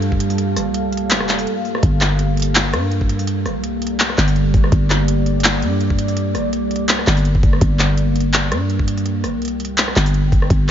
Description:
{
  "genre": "half-time drum and bass",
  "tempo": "166 BPM",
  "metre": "4/4",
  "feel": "swing 54% on 16ths, half-time",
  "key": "G minor",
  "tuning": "A4 = 439 Hz",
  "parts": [
    { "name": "deep dark ambient pad", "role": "sustained chords", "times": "0.0-10.7 s", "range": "G3 to G5", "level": "-22 LUFS", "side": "right 1 dB", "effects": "chorus, built-in reverb, sidechain pumping" },
    { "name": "growling 808-style bass", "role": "bass", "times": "0.0-10.7 s", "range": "F1 to G2", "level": "-19 LUFS", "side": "equal", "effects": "none" },
    { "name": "industrial drum kit", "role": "drums", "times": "0.0-10.7 s", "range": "handclaps, hi-hat, rim click", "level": "-20 LUFS", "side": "equal", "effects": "none" },
    { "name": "electronic kick drum", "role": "drums", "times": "0.1-10.6 s", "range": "none", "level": "-16 LUFS", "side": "equal", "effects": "none" }
  ],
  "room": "light reverb",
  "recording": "nothing above 7.5 kHz",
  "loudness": "-15 LUFS",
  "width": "side -10 dB against mid",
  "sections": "0.0-10.7 A section",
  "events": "break 1.5-1.8",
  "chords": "0.0 Gmadd9"
}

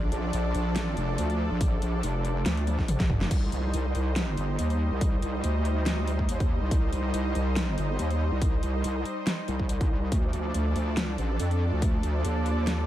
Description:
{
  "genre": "heavy wobble dubstep",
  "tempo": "141 BPM",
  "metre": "4/4",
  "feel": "swing 54% on 16ths, half-time",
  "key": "unclear",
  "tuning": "A4 = 440 Hz",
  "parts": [
    { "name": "supersaw pad", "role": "sustained chords", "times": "0.0-12.9 s", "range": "F3 to Eb5", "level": "-32 LUFS", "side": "equal", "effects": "sidechain pumping" },
    { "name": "wobble bass", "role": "bass", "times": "0.0-12.9 s", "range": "F1 to F2", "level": "-27 LUFS", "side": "equal", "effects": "chorus, overdrive" },
    { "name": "dubstep drum kit", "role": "drums", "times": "0.1-12.8 s", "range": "crash cymbal, hi-hat, snare drum, toms", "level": "-32 LUFS", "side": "equal", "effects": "none" },
    { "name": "electronic kick drum", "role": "drums", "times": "1.6-11.9 s", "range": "none", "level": "-26 LUFS", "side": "equal", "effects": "none" }
  ],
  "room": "little or no reverb",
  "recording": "none",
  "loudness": "-25 LUFS",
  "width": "side -13 dB against mid",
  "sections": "0.0-12.9 A section",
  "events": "drum fill 2.7-3.3",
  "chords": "0.0 Bb; 3.3 Cm; 10.1 Dm"
}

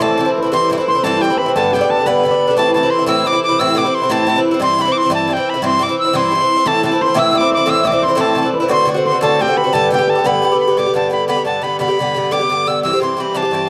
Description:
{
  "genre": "celtic folk",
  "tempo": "117 BPM (dotted quarters)",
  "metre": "6/8",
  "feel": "straight",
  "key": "G major",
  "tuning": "A4 = 441 Hz",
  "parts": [
    { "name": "bright reedy wooden whistle", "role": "melody", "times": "0.0-13.7 s", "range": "G5 to E6", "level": "-19 LUFS", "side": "equal", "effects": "plate reverb" },
    { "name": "cimbalom", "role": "second line", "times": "0.0-13.1 s", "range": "G4 to E5", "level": "-21 LUFS", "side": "equal", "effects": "none" },
    { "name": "Irish bouzouki", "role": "accompaniment", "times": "0.0-13.7 s", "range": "G2 to G4", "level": "-19 LUFS", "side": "equal", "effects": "none" }
  ],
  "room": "moderate studio reverb, RT60 0.5 s",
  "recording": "dark, warm production",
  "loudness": "-15 LUFS",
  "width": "mono",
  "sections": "0.0-2.6 A section; 2.6-10.8 A section; 10.8-13.7 B section",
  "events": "none",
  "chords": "0.0 Am; 0.5 C; 1.6 G; 2.6 Am; 4.6 C; 6.7 Am; 8.7 D7; 9.7 G; 12.8 C"
}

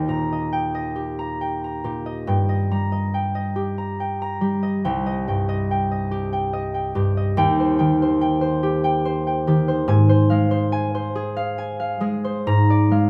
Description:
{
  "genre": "classical, solo harp piece",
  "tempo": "47 BPM (dotted quarters)",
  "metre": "6/8",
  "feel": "rubato",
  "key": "Eb major",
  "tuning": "A4 = 442 Hz",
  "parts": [
    { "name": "concert harp", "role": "solo", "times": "0.0-13.1 s", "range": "C2 to Bb5", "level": "-22 LUFS", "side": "equal", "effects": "none" }
  ],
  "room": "light reverb",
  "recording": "none",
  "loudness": "-22 LUFS",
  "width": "mono",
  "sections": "0.0-13.1 A section",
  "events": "none",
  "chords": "0.0 Eb; 2.3 Eb/G; 4.9 Cm; 7.4 Cm/Eb; 9.9 Fm/Ab; 12.5 Bb7/Ab"
}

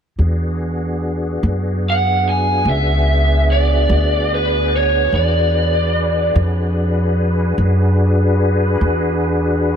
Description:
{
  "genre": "blues",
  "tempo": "49 BPM (dotted quarters)",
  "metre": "12/8",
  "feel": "straight",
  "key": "E mixolydian",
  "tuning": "A4 = 440 Hz",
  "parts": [
    { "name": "tonewheel organ", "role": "sustained chords", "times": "0.2-9.8 s", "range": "B3 to B4", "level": "-21 LUFS", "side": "left 1 dB", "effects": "slow rotary speaker, chorus vibrato" },
    { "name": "upright bass", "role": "bass", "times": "0.2-9.8 s", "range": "C#2 to F#2", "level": "-17 LUFS", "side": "equal", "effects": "none" },
    { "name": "lead guitar through a small cranked amp", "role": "melody", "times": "1.9-6.3 s", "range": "B4 to G#5", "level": "-19 LUFS", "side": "right 1 dB", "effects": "overdrive" }
  ],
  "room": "moderate cathedral reverb, RT60 6.4 s",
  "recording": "dreamy mix soaked in reverb",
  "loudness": "-14 LUFS",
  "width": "side -8 dB against mid",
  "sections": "0.2-9.8 A section",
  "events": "none",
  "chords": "0.2 E9"
}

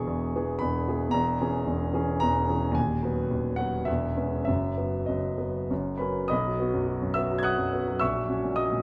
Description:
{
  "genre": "classical, romantic character piece for solo piano",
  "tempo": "97-112 BPM",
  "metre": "3/4",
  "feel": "rubato",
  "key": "B major",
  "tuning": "A4 = 440 Hz",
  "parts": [
    { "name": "warm concert grand piano", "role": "solo", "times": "0.0-8.8 s", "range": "D#1 to G#6", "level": "-28 LUFS", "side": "equal", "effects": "none" }
  ],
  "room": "moderate recital hall reverb, RT60 1.5 s",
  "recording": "close, detailed microphones",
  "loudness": "-28 LUFS",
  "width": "mono",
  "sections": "0.0-6.3 A section; 6.3-8.8 B section",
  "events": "none",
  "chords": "0.0 E; 1.1 C#m/E; 2.8 B/D#; 3.9 C#m7/E; 4.5 B/F#; 5.7 F#; 6.3 B; 8.0 F#7/A#"
}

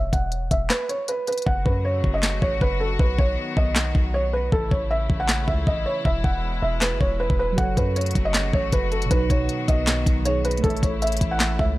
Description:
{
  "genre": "hip hop, trap",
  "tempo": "157 BPM",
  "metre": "4/4",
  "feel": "half-time",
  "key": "F# dorian",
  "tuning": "A4 = 440 Hz",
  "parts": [
    { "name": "felt-muted upright piano", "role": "melody", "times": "0.0-11.8 s", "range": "A4 to F#5", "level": "-26 LUFS", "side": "right 1 dB", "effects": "low-pass filter" },
    { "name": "warm 808-style bass", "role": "bass", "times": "0.0-11.8 s", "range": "E1 to F#2", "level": "-25 LUFS", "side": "equal", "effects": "none" },
    { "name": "trap drum kit", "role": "drums", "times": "0.1-11.7 s", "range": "handclaps, hi-hat, kick drum, snare drum", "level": "-23 LUFS", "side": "equal", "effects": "none" },
    { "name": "warm studio string section", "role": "sustained chords", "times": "1.5-11.8 s", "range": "B2 to F#4", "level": "-31 LUFS", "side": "left 3 dB", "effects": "none" },
    { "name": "muted felt-like synth keys", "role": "accompaniment", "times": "7.5-11.8 s", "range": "B2 to E5", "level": "-29 LUFS", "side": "right 3 dB", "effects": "chorus, low-pass filter" }
  ],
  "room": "little or no reverb",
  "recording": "none",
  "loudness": "-20 LUFS",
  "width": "side -18 dB against mid",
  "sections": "0.0-11.8 A section",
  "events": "filter sweep 0.0-1.5; kick muted 0.7-1.5; hi-hats muted 1.5-7.6",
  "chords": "0.0 Esus2; 1.5 F#m; 3.0 B; 4.5 A; 6.1 E; 7.6 F#m; 9.1 B; 10.6 A"
}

